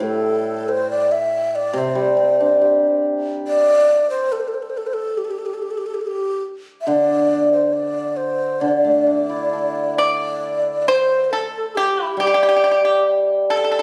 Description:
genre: chinese traditional, Chinese chamber ensemble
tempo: 69 BPM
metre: 4/4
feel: rubato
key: D shang mode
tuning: A4 = 440 Hz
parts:
  - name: breathy mellow low xiao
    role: melody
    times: 0.0-13.8 s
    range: G4 to E5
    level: -23 LUFS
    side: equal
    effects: none
  - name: hammered dulcimer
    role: accompaniment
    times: 0.0-13.8 s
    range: A2 to A4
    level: -21 LUFS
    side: equal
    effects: none
  - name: pipa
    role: second line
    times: 10.0-13.8 s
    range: G4 to D5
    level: -22 LUFS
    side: equal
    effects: none
room: light reverb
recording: recorded on a phone in the room, studio ambience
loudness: -19 LUFS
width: mono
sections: 0.0-10.4 A section; 10.4-13.8 B section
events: none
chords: none

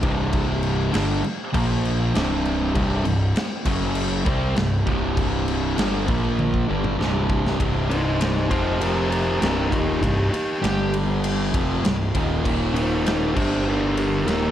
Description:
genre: stoner and doom metal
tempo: 99 BPM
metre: 4/4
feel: straight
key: C minor from 7.6 s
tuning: A4 = 440 Hz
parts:
  - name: fuzz guitar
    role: riff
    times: 0.0-14.5 s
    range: C2 to C4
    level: -23 LUFS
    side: equal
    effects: distortion
  - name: fuzz picked electric bass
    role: bass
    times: 0.0-14.5 s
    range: C1 to C2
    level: -26 LUFS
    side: equal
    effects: overdrive
  - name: big rock drum kit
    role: drums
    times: 0.0-14.4 s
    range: crash cymbal, kick drum, ride cymbal, snare drum, toms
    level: -26 LUFS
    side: equal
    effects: none
  - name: fuzz lead guitar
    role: melody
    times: 7.9-14.5 s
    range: Eb4 to C5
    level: -25 LUFS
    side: equal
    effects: distortion
room: studio ambience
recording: none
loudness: -20 LUFS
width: side -11 dB against mid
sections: 0.0-7.6 A section; 7.6-14.5 B section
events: drum fill 6.4-7.6; lead electric guitar solo 7.6-14.5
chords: 0.0 C5; 1.5 Bb5; 2.1 C5; 3.7 F#5; 4.3 C5; 6.1 Bb5; 6.7 C5; 7.6 Cm; 8.5 F5; 9.4 Cm; 10.6 G5; 11.5 Cm; 12.4 Eb5; 13.4 G5

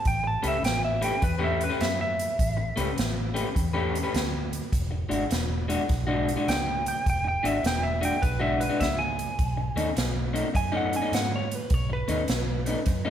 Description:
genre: electric blues shuffle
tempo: 103 BPM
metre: 4/4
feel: swing 66% on 8ths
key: E mixolydian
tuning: A4 = 440 Hz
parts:
  - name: lightly driven lead guitar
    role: melody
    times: 0.0-13.1 s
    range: B4 to A5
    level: -29 LUFS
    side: right 1 dB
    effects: none
  - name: vintage muted fingered electric bass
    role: bass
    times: 0.1-13.1 s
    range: E1 to G#2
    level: -30 LUFS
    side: equal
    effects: none
  - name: swinging big-band drum kit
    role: drums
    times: 0.1-13.0 s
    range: hi-hat, kick drum, snare drum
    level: -29 LUFS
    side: right 1 dB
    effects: none
  - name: electric guitar through a small old amp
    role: riff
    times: 0.2-13.1 s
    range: B2 to B4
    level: -29 LUFS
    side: left 2 dB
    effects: spring reverb
room: moderate large studio reverb, RT60 1.2 s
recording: band playing live in one room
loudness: -24 LUFS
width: side -10 dB against mid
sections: 0.0-13.1 A section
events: none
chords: 0.1 A9; 4.7 E9; 9.4 B9

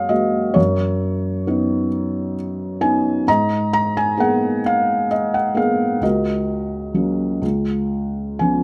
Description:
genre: classical, lyrical solo piano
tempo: 41-45 BPM (dotted quarters)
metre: 6/8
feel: rubato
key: F# major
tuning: A4 = 445 Hz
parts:
  - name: felt-muted upright piano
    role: solo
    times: 0.0-8.6 s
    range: C#2 to A#5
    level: -20 LUFS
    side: equal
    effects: none
room: light reverb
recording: close, detailed microphones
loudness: -20 LUFS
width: mono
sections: 0.0-8.6 A section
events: none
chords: 0.0 F#add9; 0.6 Badd9/F#; 3.3 G#madd9; 6.0 F#/C#; 7.4 C#7

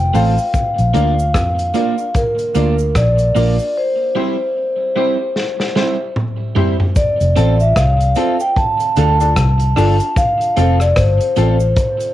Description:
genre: roots reggae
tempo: 75 BPM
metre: 4/4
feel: swing 59% on 16ths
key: F major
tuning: A4 = 441 Hz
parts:
  - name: vibraphone with soft mallets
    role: melody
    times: 0.0-12.1 s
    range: Bb4 to A5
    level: -17 LUFS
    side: left 1 dB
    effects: cassette tape, tape echo
  - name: vintage muted fingered electric bass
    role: bass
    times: 0.0-11.7 s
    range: F1 to F2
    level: -14 LUFS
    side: equal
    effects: none
  - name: electric guitar at the edge of break-up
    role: accompaniment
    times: 0.1-11.6 s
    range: G3 to A4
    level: -23 LUFS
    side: right 9 dB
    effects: spring reverb, cassette tape, tape echo
  - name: bright upright piano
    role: stabs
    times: 0.1-11.5 s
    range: C4 to D5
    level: -22 LUFS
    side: left 8 dB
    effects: cassette tape
  - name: vintage drum kit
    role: drums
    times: 0.1-12.1 s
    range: hi-hat, kick drum, rim click, snare drum, toms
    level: -19 LUFS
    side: equal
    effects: cassette tape
  - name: cabasa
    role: percussion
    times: 0.1-12.1 s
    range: none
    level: -40 LUFS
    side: right 12 dB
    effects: none
room: moderate small room reverb, RT60 0.6 s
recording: home recording on cassette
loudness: -13 LUFS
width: side -13 dB against mid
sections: 0.0-7.0 A section; 7.0-12.1 B section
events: break 3.8-7.0; drum fill 5.4-7.0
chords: 0.0 F; 0.5 Bb; 3.8 C; 7.0 F; 8.6 Dm; 10.2 F

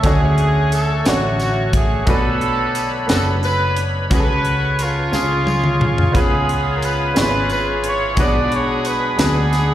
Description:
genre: slow gospel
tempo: 59 BPM (dotted quarters)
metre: 6/8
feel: straight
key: unclear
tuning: A4 = 440 Hz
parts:
  - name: warm trumpet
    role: melody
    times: 0.0-9.7 s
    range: E#4 to D5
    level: -22 LUFS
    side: right 2 dB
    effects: slapback echo, tape echo
  - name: bright upright piano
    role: accompaniment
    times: 0.0-9.7 s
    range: B2 to C#5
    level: -23 LUFS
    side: equal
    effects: slapback echo
  - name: bright tonewheel organ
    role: sustained chords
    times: 0.0-9.7 s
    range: A3 to C#6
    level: -26 LUFS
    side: equal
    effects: chorus vibrato, stopped rotary speaker
  - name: fingered electric bass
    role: bass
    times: 0.0-9.7 s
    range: F#1 to D2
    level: -20 LUFS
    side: equal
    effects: none
  - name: crisp fusion drum kit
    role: drums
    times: 0.0-9.7 s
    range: hi-hat, kick drum, snare drum, toms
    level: -20 LUFS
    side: equal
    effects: none
  - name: tambourine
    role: percussion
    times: 0.0-9.7 s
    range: none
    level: -35 LUFS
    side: right 1 dB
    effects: none
  - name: clear horn section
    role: melody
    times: 0.1-9.7 s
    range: G#3 to D5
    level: -24 LUFS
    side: left 4 dB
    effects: slapback echo
room: light reverb, studio reverb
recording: live gig heard through the venue's PA, recital hall reverb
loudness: -15 LUFS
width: side -12 dB against mid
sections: 0.0-9.7 A section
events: drum fill 5.1-6.1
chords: 0.0 Dmaj7; 2.1 Bm7; 4.1 F#m/C#; 5.1 C#; 6.1 C#7; 8.2 G#m7b5/B

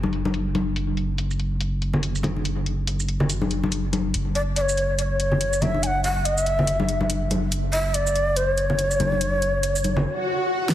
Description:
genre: deep dubstep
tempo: 142 BPM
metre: 4/4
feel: swing 59% on 16ths, half-time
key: unclear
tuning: A4 = 439 Hz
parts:
  - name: soft dub sub bass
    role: bass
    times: 0.0-10.1 s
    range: F#1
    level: -26 LUFS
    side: equal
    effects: none
  - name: congas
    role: percussion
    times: 0.0-10.0 s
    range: none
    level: -26 LUFS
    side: left 1 dB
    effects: dub echo
  - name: deep house drum kit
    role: drums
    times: 0.1-10.7 s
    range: hi-hat, shaker, snare drum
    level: -28 LUFS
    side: equal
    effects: overdrive, low-pass filter on hats, small room reverb, low-pass filter on snare, low-pass filter on perc, low-pass filter on toms
  - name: breathy long shakuhachi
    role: melody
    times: 4.4-10.5 s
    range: C#5 to G#5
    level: -23 LUFS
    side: equal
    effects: dub echo
  - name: swell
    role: sound effects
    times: 10.2-10.7 s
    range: none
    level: -23 LUFS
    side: left 1 dB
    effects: none
room: moderate lush hall reverb, RT60 1.8 s, digital ambience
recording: heavily compressed radio sound, multiband compression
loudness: -21 LUFS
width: side -12 dB against mid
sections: 0.0-10.7 A section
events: swell 10.2-10.7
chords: 0.0 F#5

